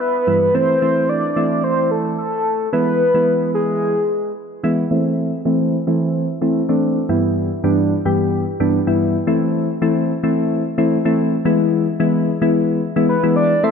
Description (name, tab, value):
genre	pop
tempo	110 BPM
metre	4/4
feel	straight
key	A minor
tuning	A4 = 441 Hz
part	soft octave-layered synth lead	melody	0.0-4.3, 13.1-13.7 s	G#4 to E5	-17 LUFS	equal	chorus, dub echo
part	soft electric-piano-like synth keys	accompaniment	0.3-13.7 s	G2 to C5	-16 LUFS	left 1 dB	chorus, low-pass filter
room	moderate plate reverb, RT60 3.1 s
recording	dark, warm production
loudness	-15 LUFS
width	side -6 dB against mid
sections	0.0-4.9 A section; 4.9-13.6 B section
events	build-up 4.9-13.6; filter sweep on synth keys 4.9-13.6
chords	0.0 Em; 0.5 Am; 2.7 E; 4.9 Am; 7.1 Em/G; 9.3 Am; 11.5 E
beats	0.00 | 0.55 1.09 1.64 2.18 | 2.73 3.27 3.82 4.36 | 4.91 5.46 6.00 6.55 | 7.09 7.64 8.18 8.73 | 9.27 9.82 10.36 10.91 | 11.46 12.00 12.55 13.09 | 13.64